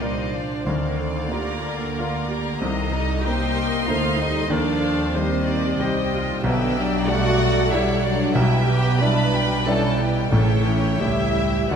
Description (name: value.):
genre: classical, romantic movement for piano and orchestra.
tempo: 93 BPM.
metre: 3/4.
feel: rubato.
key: unclear.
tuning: A4 = 443 Hz.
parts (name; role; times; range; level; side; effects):
clear concert grand piano; melody; 0.0-11.8 s; A1 to D5; -23 LUFS; equal; none.
warm chamber violin section; melody; 0.0-11.8 s; G4 to B5; -30 LUFS; left 3 dB; none.
warm chamber violin section; second line; 0.0-11.8 s; C5 to C6; -30 LUFS; left 1 dB; none.
warm chamber viola section; accompaniment; 0.0-11.8 s; E4 to E5; -29 LUFS; right 1 dB; none.
warm French horn section; sustained chords; 0.0-11.8 s; B2 to D4; -28 LUFS; left 4 dB; none.
dark chamber cello section; bass; 0.0-11.8 s; G3 to B4; -28 LUFS; right 2 dB; none.
dark chamber double bass section; bass; 0.0-11.8 s; A1 to Eb2; -27 LUFS; right 4 dB; none.
timpani; percussion; 0.7-1.6, 10.3-11.3 s; A2 to D3; -30 LUFS; equal; none.
room: moderate concert hall reverb, RT60 2.2 s.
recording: minimal, uncompressed stereo recording.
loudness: -19 LUFS.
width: side -7 dB against mid.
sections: 0.0-11.8 A section.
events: none.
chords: 0.0 Bb; 0.7 Bb/D; 2.6 Cm7; 4.5 Cm/Eb; 6.4 G/B; 10.3 A7.